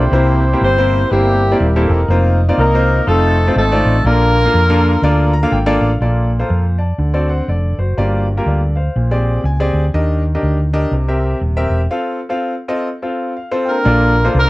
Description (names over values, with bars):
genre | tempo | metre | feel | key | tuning
uptempo gospel | 122 BPM | 4/4 | swing 60% on 8ths | Bb major | A4 = 439 Hz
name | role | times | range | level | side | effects
mellow horn section | melody | 0.0-5.5, 13.7-14.5 s | G3 to C5 | -16 LUFS | equal | none
clear concert grand piano | accompaniment | 0.0-14.5 s | G2 to Bb5 | -18 LUFS | left 1 dB | none
hollow-body short-scale fingered electric bass | bass | 0.0-14.5 s | Eb1 to F2 | -15 LUFS | equal | none
room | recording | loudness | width
light reverb | dark, warm production | -12 LUFS | side -19 dB against mid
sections
0.0-6.0 A section; 6.0-13.9 B section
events
grand piano fill 5.0-6.0, 9.2-9.9, 13.1-13.9; break 11.9-13.9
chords
0.1 C7; 2.1 F7sus4; 3.1 F7; 4.0 Bbmaj7; 7.0 D7; 8.0 Gm7; 9.0 Bb13; 9.9 Ebmaj7; 10.9 C7; 11.9 F; 13.9 Bbmaj7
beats
| 0.13 0.62 1.11 1.60 | 2.09 2.58 3.07 3.56 | 4.04 4.53 5.02 5.51 | 6.00 6.50 6.99 7.48 | 7.97 8.46 8.95 9.44 | 9.93 10.43 10.92 11.41 | 11.90 12.39 12.88 13.37 | 13.86 14.34